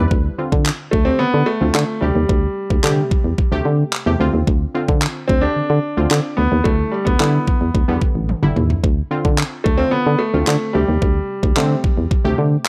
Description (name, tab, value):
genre	dance-pop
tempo	110 BPM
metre	4/4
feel	straight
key	D dorian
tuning	A4 = 440 Hz
part	glassy wavetable pluck	accompaniment	0.0-12.7 s	C3 to D5	-27 LUFS	equal	chorus, sidechain pumping
part	solid FM bass	bass	0.0-12.6 s	G1 to D3	-20 LUFS	equal	sidechain pumping
part	pop drum kit	drums	0.1-12.7 s	handclaps, kick drum, toms	-21 LUFS	equal	overdrive
part	clear baby grand piano	melody	0.9-12.3 s	G3 to D4	-23 LUFS	equal	slapback echo
room	little or no reverb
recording	dry, close 1970s-style studio recording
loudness	-17 LUFS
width	mono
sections	0.1-12.7 A section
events	drum fill 8.3-8.8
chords	0.1 Dm7; 2.0 Am7/D; 4.2 Dm7; 6.7 Em7/D; 8.8 Dm7; 10.7 Am7/D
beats	| 0.11 0.66 1.20 1.75 | 2.29 2.84 3.38 3.93 | 4.47 5.02 5.57 6.11 | 6.66 7.20 7.75 8.29 | 8.84 9.38 9.93 10.47 | 11.02 11.56 12.11 12.66